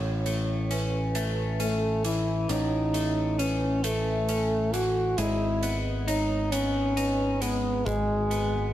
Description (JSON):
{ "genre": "post-rock", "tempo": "45 BPM (dotted quarters)", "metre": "6/8", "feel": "straight", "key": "A lydian", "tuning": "A4 = 439 Hz", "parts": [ { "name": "clean electric guitar", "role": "arpeggios", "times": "0.0-8.7 s", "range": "A2 to D#4", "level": "-33 LUFS", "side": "left 5 dB", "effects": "phaser, tape echo" }, { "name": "vibraphone with soft mallets", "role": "arpeggios", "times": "0.0-8.7 s", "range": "A4 to D#5", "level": "-36 LUFS", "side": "right 6 dB", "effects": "tape echo" }, { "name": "growling picked electric bass", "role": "bass", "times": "0.0-8.7 s", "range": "G#1 to A1", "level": "-29 LUFS", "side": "equal", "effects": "overdrive" }, { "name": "huge arena drum kit", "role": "drums", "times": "0.3-8.5 s", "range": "hi-hat, kick drum", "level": "-37 LUFS", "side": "right 2 dB", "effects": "none" }, { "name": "warm French horn", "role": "melody", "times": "1.6-8.7 s", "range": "G#3 to F#4", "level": "-27 LUFS", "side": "equal", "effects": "tape echo" } ], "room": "moderate large studio reverb, RT60 1.2 s, small room ambience", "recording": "none", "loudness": "-24 LUFS", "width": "side -12 dB against mid", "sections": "0.0-8.7 A section", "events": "none", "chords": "0.0 A; 5.2 G#madd11" }